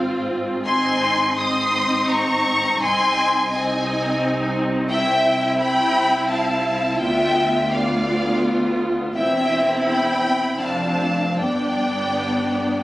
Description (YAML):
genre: classical, slow romantic movement for string orchestra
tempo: 84 BPM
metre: 3/4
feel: rubato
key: C major from 4.9 s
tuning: A4 = 439 Hz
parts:
  - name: rich chamber violin section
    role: melody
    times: 0.0-12.8 s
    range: F5 to Eb6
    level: -23 LUFS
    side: left 2 dB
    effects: none
  - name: rich studio violin section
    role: second line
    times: 0.0-12.8 s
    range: C5 to C6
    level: -23 LUFS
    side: equal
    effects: none
  - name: warm studio viola section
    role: accompaniment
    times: 0.0-12.8 s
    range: B3 to F4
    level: -22 LUFS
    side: equal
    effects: none
  - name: clear chamber double bass section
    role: bass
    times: 0.0-12.8 s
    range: E1 to D2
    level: -30 LUFS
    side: equal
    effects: none
  - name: warm symphonic cello section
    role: bass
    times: 0.0-12.8 s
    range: C2 to Ab2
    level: -29 LUFS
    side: equal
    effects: none
room: moderate scoring stage reverb, RT60 1.8 s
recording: recorded on a phone in the room, club reverb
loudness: -18 LUFS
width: side -16 dB against mid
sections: 0.0-12.8 A section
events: none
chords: 0.0 Fm/Ab; 0.7 Ab; 2.8 Ab/C; 4.9 C; 7.0 Bdim/D; 9.1 C/E; 10.6 Dm7/F; 11.4 G